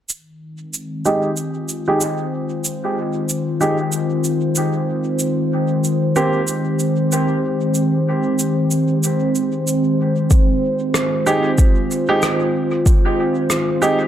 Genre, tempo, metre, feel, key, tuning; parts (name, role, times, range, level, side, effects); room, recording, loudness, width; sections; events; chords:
ambient dub; 94 BPM; 4/4; swing 58% on 16ths; F minor; A4 = 440 Hz
warbly tape-like pad; sustained chords; 0.5-14.1 s; Eb3 to C5; -18 LUFS; equal; chorus, built-in reverb
cabasa and rim click; drums; 0.1-14.0 s; -23 LUFS; right 1 dB; dub echo
clear upright piano; stabs; 1.1-6.4, 11.3-14.0 s; Ab3 to G4; -21 LUFS; right 2 dB; low-pass filter, dub echo
electronic kick drum; drums; 10.3-13.0 s; -13 LUFS; equal; overdrive
light reverb, small room ambience; -16 LUFS; side -10 dB against mid
0.1-14.1 A section
filter sweep on ambient pad 0.1-14.1; filter sweep on upright piano 0.1-14.1
0.1 Fm7; 5.2 Abmaj7; 10.3 Fm7